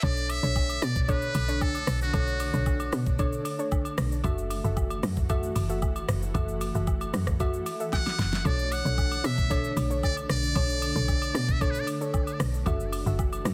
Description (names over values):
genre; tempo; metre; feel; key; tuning
amapiano; 114 BPM; 4/4; straight; B minor; A4 = 438 Hz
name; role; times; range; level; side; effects
trumpet with metal mute; melody; 0.0-3.0, 7.9-11.9 s; F#4 to F#5; -34 LUFS; equal; delay
ethereal airy pad; sustained chords; 0.7-13.5 s; D3 to F#4; -39 LUFS; equal; ensemble chorus, built-in reverb
soft round pluck; stabs; 0.0-13.2 s; D4 to E5; -36 LUFS; equal; chorus, delay
woody log drum bass; bass; 0.0-13.5 s; F#1 to B2; -31 LUFS; equal; none
smooth R&B drum kit; drums; 0.0-13.5 s; hi-hat, kick drum, rim click, shaker, snare drum; -32 LUFS; equal; soft clipping on snare
agogo bells and woodblock; percussion; 0.0-13.4 s; none; -42 LUFS; equal; none
room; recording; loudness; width
digital ambience; dense, heavily limited modern master; -27 LUFS; mono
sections
0.0-13.5 A section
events
drop 0.0-13.5; drum fill 7.9-8.5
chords
0.0 Bm9; 4.2 F#m7; 8.5 Bm9; 12.7 F#m7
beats
| 0.03 0.56 1.08 1.61 | 2.14 2.66 3.19 3.72 | 4.24 4.77 5.29 5.82 | 6.35 6.87 7.40 7.93 | 8.45 8.98 9.51 10.03 | 10.56 11.08 11.61 12.14 | 12.66 13.19